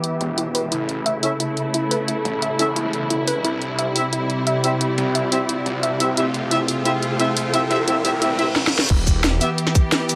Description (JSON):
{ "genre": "dark technical drum and bass", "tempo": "176 BPM", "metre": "4/4", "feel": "straight", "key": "E phrygian", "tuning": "A4 = 436 Hz", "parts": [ { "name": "rich studio string section", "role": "sustained chords", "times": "0.0-10.2 s", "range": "C3 to G4", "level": "-28 LUFS", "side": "equal", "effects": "sidechain pumping, low-pass filter" }, { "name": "soft round pluck", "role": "arpeggios", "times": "0.0-8.4 s", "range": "E4 to E5", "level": "-28 LUFS", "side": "equal", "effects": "chorus, sidechain pumping, tape echo" }, { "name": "drum and bass drum kit", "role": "drums", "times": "0.0-10.2 s", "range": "crash cymbal, hi-hat, shaker, snare drum", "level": "-25 LUFS", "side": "equal", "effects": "none" }, { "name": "riser and reverse cymbal", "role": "sound effects", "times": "1.3-8.9 s", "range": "none", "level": "-33 LUFS", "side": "equal", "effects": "none" }, { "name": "warbly tape-like pad", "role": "texture", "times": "0.0-10.2 s", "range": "C4 to B5", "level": "-31 LUFS", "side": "equal", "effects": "chorus, built-in reverb, sidechain pumping" }, { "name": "snarling distorted saw bass", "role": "bass", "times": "0.2-9.4 s", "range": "E1 to C2", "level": "-30 LUFS", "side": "equal", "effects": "distortion, tube saturation, high-pass filter" }, { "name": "warm brass ensemble", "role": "stabs", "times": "1.2-9.5 s", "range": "B3 to E5", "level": "-26 LUFS", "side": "equal", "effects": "low-pass filter, tape echo" }, { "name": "electronic kick drum", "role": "drums", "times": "8.9-9.8 s", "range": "none", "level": "-19 LUFS", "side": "equal", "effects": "none" } ], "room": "moderate plate reverb, RT60 1.6 s", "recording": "none", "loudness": "-21 LUFS", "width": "mono", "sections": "0.0-8.9 A section; 8.9-10.2 B section", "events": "build-up 0.0-8.9; filter sweep on string section 0.0-8.9; filter sweep on synth pluck 0.0-8.9; filter sweep on brass ensemble 0.0-8.9; reverse cymbal 8.2-8.9; drum fill 8.6-8.9; drop 8.9-10.2", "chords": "0.0 Em; 0.7 A; 3.4 C; 6.2 F; 8.9 Em" }